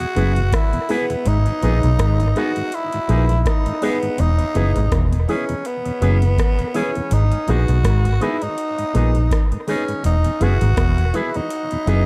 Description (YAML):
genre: roots reggae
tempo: 82 BPM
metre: 4/4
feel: swing 57% on 16ths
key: G# minor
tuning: A4 = 440 Hz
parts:
  - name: raspy tenor saxophone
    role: melody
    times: 0.0-12.1 s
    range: B3 to F#4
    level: -26 LUFS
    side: equal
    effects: tape echo
  - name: mellow tonewheel organ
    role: accompaniment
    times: 0.0-12.0 s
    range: E2 to E4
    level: -31 LUFS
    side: equal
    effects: slow rotary speaker, analog delay
  - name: booming analog drum machine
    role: drums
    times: 0.0-12.1 s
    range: hi-hat, kick drum, rim click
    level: -24 LUFS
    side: equal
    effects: none
  - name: electric guitar with an envelope filter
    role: accompaniment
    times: 0.2-12.0 s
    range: B3 to G#4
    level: -33 LUFS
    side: equal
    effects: tape echo
  - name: overdriven clav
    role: riff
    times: 0.2-12.1 s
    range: E2 to B2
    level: -29 LUFS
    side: equal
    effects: none
  - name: warm grand piano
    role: stabs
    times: 0.2-12.1 s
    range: D#4 to B4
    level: -29 LUFS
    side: equal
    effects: none
  - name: vintage muted fingered electric bass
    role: bass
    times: 0.2-12.1 s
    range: E1 to B1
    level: -19 LUFS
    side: equal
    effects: none
room: little or no reverb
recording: echo-heavy mix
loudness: -19 LUFS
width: mono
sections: 0.0-12.1 A section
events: none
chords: 0.0 E; 1.3 G#m; 4.2 E; 7.1 G#m; 10.0 E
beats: 0.52 | 1.26 1.99 2.72 3.45 | 4.18 4.92 5.65 6.38 | 7.11 7.84 8.57 9.31 | 10.04 10.77 11.50